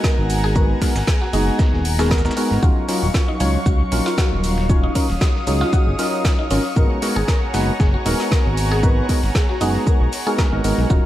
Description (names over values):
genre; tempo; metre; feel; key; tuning
deep house; 116 BPM; 4/4; swing 54% on 16ths; unclear; A4 = 442 Hz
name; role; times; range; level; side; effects
airy breathy pad; sustained chords; 0.0-11.1 s; Gb3 to Eb6; -27 LUFS; equal; chorus, sidechain pumping
mallet-like synth pluck; arpeggios; 0.0-11.0 s; Db4 to Bb4; -27 LUFS; left 1 dB; lush chorus, sidechain pumping, diffuse ambient delay
percussive organ stab; stabs; 0.0-11.1 s; Gb3 to Db5; -23 LUFS; equal; lush chorus, sidechain pumping, diffuse ambient delay
deep house drum kit; drums; 0.0-10.8 s; hi-hat, snare drum; -28 LUFS; left 1 dB; studio reverb
dusty soul sampler-style drum kit; drums; 0.0-11.0 s; hi-hat, shaker, snare drum; -34 LUFS; right 2 dB; sidechain pumping on perc, high-pass filter on perc, studio reverb, high-pass filter on snare, sidechain pumping on hats, high-pass filter on hats
electronic kick drum; drums; 0.0-11.0 s; none; -17 LUFS; equal; studio reverb
smooth gliding synth bass; bass; 0.2-11.0 s; Eb1 to Db2; -20 LUFS; equal; sidechain pumping
soft string machine; texture; 2.6-11.1 s; Ab4 to Db6; -34 LUFS; equal; ensemble chorus, sidechain pumping
room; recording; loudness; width
light reverb, digital ambience; vinyl crackle; -16 LUFS; side -13 dB against mid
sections
0.0-11.1 A section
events
none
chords
0.0 Abm9; 2.6 Ebm9; 6.8 Abm9